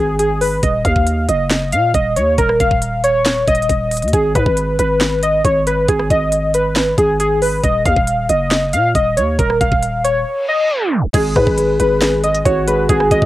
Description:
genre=hip hop, trap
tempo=137 BPM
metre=4/4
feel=half-time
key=G# dorian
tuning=A4 = 440 Hz
part: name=warbly lo-fi synth keys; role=melody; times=0.0-13.3 s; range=G#4 to E#5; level=-15 LUFS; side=equal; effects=chorus, cassette tape
part: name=growling 808-style bass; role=bass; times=0.0-13.3 s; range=D#1 to A#2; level=-19 LUFS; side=equal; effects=none
part: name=trap drum kit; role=drums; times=0.2-13.3 s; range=crash cymbal, handclaps, hi-hat, kick drum, rim click, snare drum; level=-18 LUFS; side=equal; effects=cassette tape
part: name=reverse cymbal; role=sound effects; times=10.4-11.1 s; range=none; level=-24 LUFS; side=equal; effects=none
part: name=dark grand piano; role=accompaniment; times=11.1-13.3 s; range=G#3 to F#4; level=-18 LUFS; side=left 1 dB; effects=cassette tape, plate reverb
room=light reverb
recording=home recording on cassette, tape stop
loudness=-13 LUFS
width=side -15 dB against mid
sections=0.0-11.1 A section; 11.1-13.3 B section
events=silent gap 10.3-11.1; reverse cymbal 10.4-11.1; tape stop 10.7-11.1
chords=0.0 G#m; 0.6 D#madd9; 4.1 G#m; 7.6 D#madd9; 11.1 G#m7

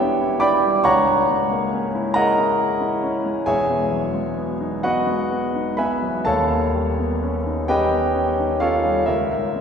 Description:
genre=classical, impressionist solo piano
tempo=42-49 BPM (dotted quarters)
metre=6/8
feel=rubato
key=unclear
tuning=A4 = 440 Hz
part: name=clear grand piano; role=solo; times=0.0-9.6 s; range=D#1 to D6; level=-18 LUFS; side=equal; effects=none
room=wet church reverb, RT60 2.5 s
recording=recorded in a church or concert hall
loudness=-18 LUFS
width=side -7 dB against mid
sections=0.0-9.6 A section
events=none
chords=0.0 Em7; 0.9 C#m6; 3.5 Emaj9; 6.2 D#aug7; 9.1 C#m6

